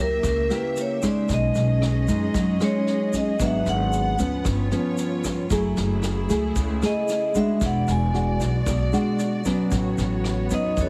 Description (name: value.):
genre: bossa nova.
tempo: 114 BPM.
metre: 4/4.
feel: straight.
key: unclear.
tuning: A4 = 440 Hz.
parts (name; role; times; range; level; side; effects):
vibraphone with medium mallets; melody; 0.0-10.9 s; C#4 to G#5; -28 LUFS; equal; plate reverb.
nylon-string guitar; accompaniment; 0.0-10.9 s; G2 to G#4; -27 LUFS; equal; none.
warm studio string section; sustained chords; 0.0-10.9 s; G#3 to F#5; -34 LUFS; equal; none.
upright bass; bass; 0.0-10.9 s; E1 to F#2; -27 LUFS; equal; none.
vintage brush drum kit; drums; 0.2-10.9 s; kick drum, rim click, snare drum; -34 LUFS; equal; none.
egg shaker; percussion; 0.2-10.9 s; none; -44 LUFS; equal; none.
room: light reverb.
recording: heavily compressed radio sound.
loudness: -23 LUFS.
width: mono.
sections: 0.0-10.9 A section.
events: vibraphone solo 0.0-10.9.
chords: 0.0 F#7b9; 1.3 B69; 3.4 G#m7b5; 4.5 G7#11; 5.5 F#m9; 7.6 E9; 9.7 A69.